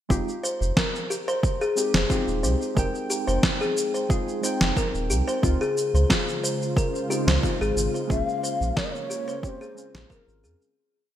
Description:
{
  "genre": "organic downtempo",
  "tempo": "90 BPM",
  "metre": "4/4",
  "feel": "straight",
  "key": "F minor",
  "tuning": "A4 = 440 Hz",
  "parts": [
    { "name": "muted felt-like synth keys", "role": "accompaniment", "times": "0.1-10.7 s", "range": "Ab3 to G5", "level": "-31 LUFS", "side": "equal", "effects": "chorus, sidechain pumping, ping-pong delay" },
    { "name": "kalimba", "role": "arpeggios", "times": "0.1-10.6 s", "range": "F4 to C5", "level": "-28 LUFS", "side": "left 1 dB", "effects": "ping-pong delay" },
    { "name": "warm sub bass", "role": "bass", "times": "0.1-10.6 s", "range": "Eb1 to F2", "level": "-25 LUFS", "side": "equal", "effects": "sidechain pumping" },
    { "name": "electronic cabasa and snare drum", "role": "drums", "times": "0.1-10.7 s", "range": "none", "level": "-26 LUFS", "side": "equal", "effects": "gated reverb" },
    { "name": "electronic kick drum", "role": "drums", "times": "0.1-10.2 s", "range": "none", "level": "-26 LUFS", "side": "equal", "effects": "overdrive" },
    { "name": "warm analog pad", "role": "sustained chords", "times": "5.4-10.8 s", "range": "Db3 to C5", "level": "-32 LUFS", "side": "equal", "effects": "chorus, sidechain pumping" },
    { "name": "breathy mellow low ney", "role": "melody", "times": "8.1-10.6 s", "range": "Bb4 to F5", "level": "-30 LUFS", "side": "left 3 dB", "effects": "none" }
  ],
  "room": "light reverb",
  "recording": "bright 1980s-style digital production",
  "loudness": "-22 LUFS",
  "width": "side -11 dB against mid",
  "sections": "0.1-10.8 groove",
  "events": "fade-out 7.2-10.8",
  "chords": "0.1 Fm7; 5.4 Dbmaj7; 8.1 Bbm7",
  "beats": "| 0.10 0.77 1.43 2.10 | 2.77 3.43 4.10 4.77 | 5.43 6.10 6.77 7.43 | 8.10 8.77 9.43 10.10"
}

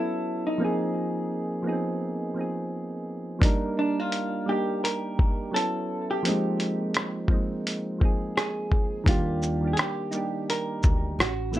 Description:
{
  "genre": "lo-fi hip hop",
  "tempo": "85 BPM",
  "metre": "4/4",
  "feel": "swing 59% on 16ths",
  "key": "Eb major",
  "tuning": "A4 = 442 Hz",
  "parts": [
    { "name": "vintage hollow-body jazz guitar", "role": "melody", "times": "0.0-11.6 s", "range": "D4 to Bb4", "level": "-30 LUFS", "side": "equal", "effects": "low-pass filter" },
    { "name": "soft electric-piano-like synth keys", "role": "accompaniment", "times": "0.0-11.6 s", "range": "Eb3 to Bb4", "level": "-28 LUFS", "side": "right 1 dB", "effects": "chorus, cassette tape, low-pass filter" },
    { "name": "lo-fi sampler-style drum kit", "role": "drums", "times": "3.4-11.6 s", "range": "hi-hat, kick drum, rim click, shaker", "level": "-24 LUFS", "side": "equal", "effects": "none" },
    { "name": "upright bass", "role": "bass", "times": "9.1-11.6 s", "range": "A1 to Eb2", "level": "-29 LUFS", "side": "equal", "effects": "none" }
  ],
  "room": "light reverb",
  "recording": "none",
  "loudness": "-24 LUFS",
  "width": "side -14 dB against mid",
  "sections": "0.0-9.1 A section; 9.1-11.6 B section",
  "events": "none",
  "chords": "0.0 A69; 0.6 Ab69; 3.4 Ebmaj7; 5.5 A69; 6.2 Ab69; 9.1 Ebmaj7",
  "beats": "| 0.59 1.30 2.00 2.71 | 3.42 4.12 4.83 5.53 | 6.24 6.94 7.65 8.36 | 9.06 9.77 10.47 11.18"
}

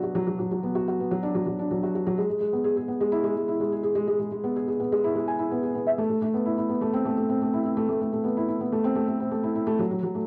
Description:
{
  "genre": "electronica",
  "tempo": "126 BPM",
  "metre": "4/4",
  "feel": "straight",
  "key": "unclear",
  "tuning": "A4 = 440 Hz",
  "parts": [
    { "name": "felt-muted upright piano", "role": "solo", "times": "0.0-10.3 s", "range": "F#3 to G#5", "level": "-26 LUFS", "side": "equal", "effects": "cassette tape" }
  ],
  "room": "wet small room reverb, RT60 0.6 s",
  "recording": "home recording on cassette",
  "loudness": "-26 LUFS",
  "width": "mono",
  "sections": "0.0-10.3 A section",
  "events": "none",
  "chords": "none",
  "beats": "| 0.27 0.75 1.22 1.70 | 2.18 2.65 3.13 3.60 | 4.08 4.56 5.03 5.51 | 5.99 6.46 6.94 7.41 | 7.89 8.37 8.84 9.32 | 9.79"
}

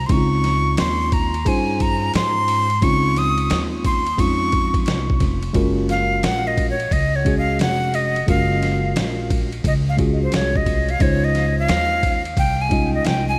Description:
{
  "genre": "hip hop, jazz-hop",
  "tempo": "88 BPM",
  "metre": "4/4",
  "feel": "swing 65% on 16ths",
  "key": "Gb lydian",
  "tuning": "A4 = 440 Hz",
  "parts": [
    { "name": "breathy bright jazz flute", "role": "melody", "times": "0.0-13.4 s", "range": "C5 to Eb6", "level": "-24 LUFS", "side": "equal", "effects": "analog delay" },
    { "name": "upright bass", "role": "bass", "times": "0.0-13.4 s", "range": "F1 to Ab2", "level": "-25 LUFS", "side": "equal", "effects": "none" },
    { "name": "tine electric piano", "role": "accompaniment", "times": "0.1-13.4 s", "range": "Ab3 to Eb5", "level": "-26 LUFS", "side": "equal", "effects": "analog delay" },
    { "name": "boom bap sampler-style drum kit", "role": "drums", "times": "0.1-13.3 s", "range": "hi-hat, kick drum, ride cymbal, snare drum", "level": "-25 LUFS", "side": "equal", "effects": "none" }
  ],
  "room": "light reverb, digital ambience",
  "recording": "echo-heavy mix, vinyl crackle",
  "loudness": "-19 LUFS",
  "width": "mono",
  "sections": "0.0-5.6 A section; 5.6-13.4 B section",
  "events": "flute solo 5.6-13.4",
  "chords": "0.1 Dbmaj9; 5.6 Gbmaj9; 11.0 Dbmaj9",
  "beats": "| 0.10 0.78 1.46 2.14 | 2.83 3.51 4.19 4.87 | 5.55 6.23 6.92 7.60 | 8.28 8.96 9.64 10.32 | 11.01 11.69 12.37 13.05"
}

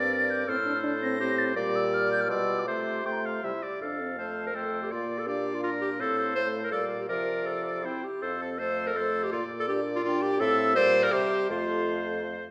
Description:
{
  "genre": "quick classical-period movement for wind quintet",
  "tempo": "164 BPM",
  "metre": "3/4",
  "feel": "rubato",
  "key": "F major",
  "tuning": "A4 = 440 Hz",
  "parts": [
    { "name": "mellow hollow silver concert flute", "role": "melody", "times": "0.0-12.5 s", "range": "D5 to Bb6", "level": "-37 LUFS", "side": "equal", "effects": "none" },
    { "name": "bright oboe", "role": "second line", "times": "0.0-12.4 s", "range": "A4 to G5", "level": "-36 LUFS", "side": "equal", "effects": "none" },
    { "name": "clear clarinet", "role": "accompaniment", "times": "0.0-12.3 s", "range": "E4 to C5", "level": "-32 LUFS", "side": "equal", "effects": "none" },
    { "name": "mellow French horn", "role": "accompaniment", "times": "0.0-12.5 s", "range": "F3 to D4", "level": "-37 LUFS", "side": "equal", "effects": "none" },
    { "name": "mellow bassoon", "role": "bass", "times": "0.0-12.5 s", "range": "F2 to C3", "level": "-36 LUFS", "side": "equal", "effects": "none" }
  ],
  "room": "moderate recital hall reverb, RT60 1.6 s",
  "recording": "none",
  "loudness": "-28 LUFS",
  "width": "mono",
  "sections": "0.0-3.8 A section; 3.8-12.5 B section",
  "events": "none",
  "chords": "0.5 F/A; 1.6 Gm/Bb; 2.3 G7/B; 2.7 F/C; 3.4 C; 3.8 F; 4.9 Bb; 6.0 F/A; 6.7 Gm7/Bb; 7.1 F/C; 7.9 C; 8.2 F; 9.3 Bb; 10.4 F/A; 10.8 Gm7/Bb; 11.1 C; 11.5 F",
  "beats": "0.12 | 0.48 0.84 1.20 | 1.56 1.92 2.29 | 2.67 3.06 3.44 | 3.82 4.18 4.55 | 4.92 5.27 5.63 | 6.00 6.36 6.73 | 7.10 7.48 7.85 | 8.23 8.60 8.96 | 9.33 9.69 10.05 | 10.40 10.76 11.13 | 11.51 11.89 12.27"
}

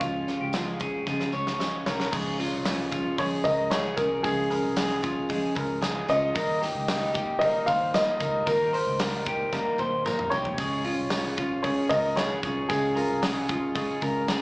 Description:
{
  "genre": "jangly indie pop",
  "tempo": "114 BPM",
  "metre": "4/4",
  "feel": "straight",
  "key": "unclear",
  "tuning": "A4 = 440 Hz",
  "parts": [
    { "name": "warm upright piano", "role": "melody", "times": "0.0-14.4 s", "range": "F4 to F5", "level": "-28 LUFS", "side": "equal", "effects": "slapback echo" },
    { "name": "picked steel-string acoustic guitar", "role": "accompaniment", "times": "0.0-14.4 s", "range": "Db3 to F4", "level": "-31 LUFS", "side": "equal", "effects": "none" },
    { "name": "electric guitar through a small old amp", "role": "arpeggios", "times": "0.0-14.4 s", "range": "F4 to Db5", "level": "-31 LUFS", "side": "left 1 dB", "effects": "slapback echo, tape echo" },
    { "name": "vintage muted fingered electric bass", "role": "bass", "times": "0.0-14.4 s", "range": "C2 to Db3", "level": "-37 LUFS", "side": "equal", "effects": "none" },
    { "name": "big rock drum kit", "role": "drums", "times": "0.0-14.4 s", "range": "crash cymbal, hi-hat, kick drum, snare drum, toms", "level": "-31 LUFS", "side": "equal", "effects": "none" },
    { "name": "tambourine", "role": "percussion", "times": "0.0-14.4 s", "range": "none", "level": "-43 LUFS", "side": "equal", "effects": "none" }
  ],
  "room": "light reverb",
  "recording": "live gig heard through the venue's PA, club reverb, small speaker sound",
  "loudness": "-24 LUFS",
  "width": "side -26 dB against mid",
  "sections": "0.0-2.1 A section; 2.1-14.4 B section",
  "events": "drum fill 1.1-2.1, 9.5-10.6",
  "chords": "0.0 Db; 6.4 Eb; 10.6 Db",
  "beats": "| 0.01 0.54 1.07 1.60 | 2.13 2.66 3.19 3.72 | 4.25 4.78 5.30 5.83 | 6.36 6.89 7.42 7.94 | 8.47 9.00 9.53 10.06 | 10.58 11.11 11.64 12.17 | 12.70 13.23 13.76 14.28"
}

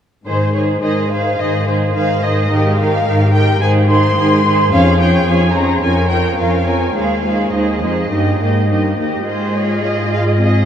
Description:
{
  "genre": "quick classical-period movement for symphony orchestra",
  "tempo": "106 BPM",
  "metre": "4/4",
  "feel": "rubato",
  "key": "Ab major",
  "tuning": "A4 = 436 Hz",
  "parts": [
    { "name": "muted chamber violin section", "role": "melody", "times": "0.3-10.7 s", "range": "C5 to C6", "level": "-20 LUFS", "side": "left 2 dB", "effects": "none" },
    { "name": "muted chamber violin section", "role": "second line", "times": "0.3-10.7 s", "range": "G4 to Eb5", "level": "-19 LUFS", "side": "equal", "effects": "none" },
    { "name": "muted symphonic viola section", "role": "accompaniment", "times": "0.3-10.7 s", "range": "Eb3 to F4", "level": "-18 LUFS", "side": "right 2 dB", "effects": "none" },
    { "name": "muted symphonic cello section", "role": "bass", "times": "0.3-10.7 s", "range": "Eb2 to Ab2", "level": "-17 LUFS", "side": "left 1 dB", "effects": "none" }
  ],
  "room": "wet huge ambient reverb, RT60 9.2 s",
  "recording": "in a vast, echoing space",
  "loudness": "-12 LUFS",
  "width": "side -9 dB against mid",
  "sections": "0.3-10.7 A section",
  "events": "none",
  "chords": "0.3 Ab; 4.7 Db/F; 7.0 Ab/Eb; 8.1 Eb/G; 9.3 Ab",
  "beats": "| 0.27 0.83 1.39 1.96 | 2.52 3.07 3.63 4.18 | 4.73 5.28 5.83 6.39 | 6.96 7.54 8.12 8.70 | 9.29 9.86 10.42"
}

